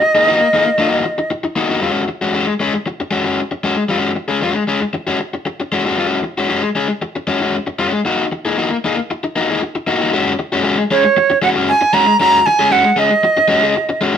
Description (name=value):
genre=funk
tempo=116 BPM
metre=4/4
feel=straight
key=unclear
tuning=A4 = 442 Hz
part: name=bright silver concert flute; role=melody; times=0.0-1.3, 10.9-14.0 s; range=Db5 to Bb5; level=-12 LUFS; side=right 3 dB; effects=none
part: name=overdriven electric guitar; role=accompaniment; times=0.0-14.2 s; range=Ab3 to Ab4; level=-16 LUFS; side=left 3 dB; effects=none
room=moderate studio reverb, RT60 0.6 s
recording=band playing live in one room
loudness=-14 LUFS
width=side -8 dB against mid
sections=0.0-1.8 A section; 1.8-10.1 B section; 10.1-14.2 A section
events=none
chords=0.0 Gb6; 1.8 Ab7sus4; 8.1 Gb6; 10.1 Ebm7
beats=0.28 0.79 1.31 | 1.83 2.35 2.86 3.38 | 3.90 4.42 4.94 5.46 | 5.97 6.49 7.01 7.53 | 8.05 8.57 9.09 9.61 | 10.12 10.64 11.16 11.68 | 12.20 12.71 13.23 13.75